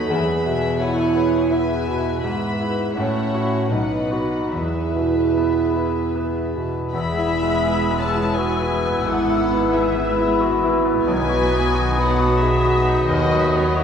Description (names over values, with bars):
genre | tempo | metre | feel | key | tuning
classical, romantic movement for piano and orchestra | 70-91 BPM | 3/4 | rubato | E major | A4 = 440 Hz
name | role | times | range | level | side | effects
bright concert grand piano | melody | 0.0-13.8 s | B1 to B4 | -22 LUFS | left 1 dB | none
warm studio violin section | second line | 0.0-13.8 s | E4 to B5 | -30 LUFS | left 3 dB | none
dark symphonic viola section | accompaniment | 0.0-13.8 s | D#3 to C#5 | -30 LUFS | equal | none
warm French horn section | sustained chords | 0.0-13.8 s | D#3 to G#4 | -24 LUFS | right 3 dB | none
warm symphonic cello section | bass | 0.0-13.8 s | E2 to D#3 | -30 LUFS | right 2 dB | none
warm chamber violin section | melody | 6.9-13.8 s | C#5 to B5 | -27 LUFS | left 3 dB | none
hollow flute section | second line | 6.9-13.8 s | D#6 to E6 | -28 LUFS | left 3 dB | none
mellow cor anglais | second line | 6.9-13.8 s | G#4 to B4 | -31 LUFS | left 2 dB | none
warm clarinet | second line | 6.9-13.8 s | E4 to F#4 | -30 LUFS | left 1 dB | none
mellow bassoon | accompaniment | 6.9-13.8 s | B3 | -29 LUFS | left 2 dB | none
mellow trumpet | stabs | 6.9-13.8 s | G#4 to B4 | -30 LUFS | left 3 dB | none
rich studio double bass section | bass | 6.9-13.8 s | E1 to D#2 | -26 LUFS | right 2 dB | none
room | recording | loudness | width
wet scoring stage reverb, RT60 1.8 s | heard from further back in the room | -17 LUFS | side -7 dB against mid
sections
0.0-6.9 A section; 6.9-13.8 B section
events
none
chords
0.1 E; 2.2 E/G#; 3.0 F#m7/A; 3.7 B; 4.5 E; 9.1 E/G#; 11.1 B; 13.1 B/D#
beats
| 0.10 0.80 1.51 | 2.22 2.96 3.71 | 4.52 5.36 6.15 | 6.94 7.66 8.37 | 9.06 9.74 10.41 | 11.08 11.75 12.42 | 13.09 13.77